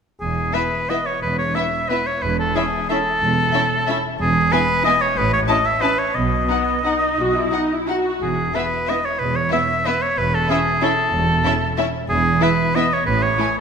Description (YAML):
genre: classical, orchestral ballroom waltz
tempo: 165-202 BPM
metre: 3/4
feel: rubato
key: E major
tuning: A4 = 440 Hz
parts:
  - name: clear oboe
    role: second line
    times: 0.2-13.6 s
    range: G#4 to E5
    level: -19 LUFS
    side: equal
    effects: none
  - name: rich studio cello section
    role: bass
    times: 0.2-13.3 s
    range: E2 to B2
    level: -26 LUFS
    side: right 3 dB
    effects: none
  - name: warm studio double bass section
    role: bass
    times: 0.2-13.3 s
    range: E1 to B1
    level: -26 LUFS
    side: right 2 dB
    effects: none
  - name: warm symphonic violin section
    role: melody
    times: 0.5-13.5 s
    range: E5 to A5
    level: -28 LUFS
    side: left 5 dB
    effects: none
  - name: rich symphonic viola section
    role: accompaniment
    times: 0.5-13.5 s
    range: A3 to F#4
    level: -26 LUFS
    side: right 1 dB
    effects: none
  - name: rich studio violin section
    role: second line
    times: 0.6-13.5 s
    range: D#4 to E4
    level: -29 LUFS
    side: left 4 dB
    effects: none
room: wet scoring stage reverb, RT60 2.0 s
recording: minimal, uncompressed stereo recording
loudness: -17 LUFS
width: side -6 dB against mid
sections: 0.2-13.6 A section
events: none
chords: 0.2 E5; 2.2 A/E; 4.2 E; 5.2 A; 6.2 B; 8.2 E5; 10.2 A/E; 12.1 E; 13.1 A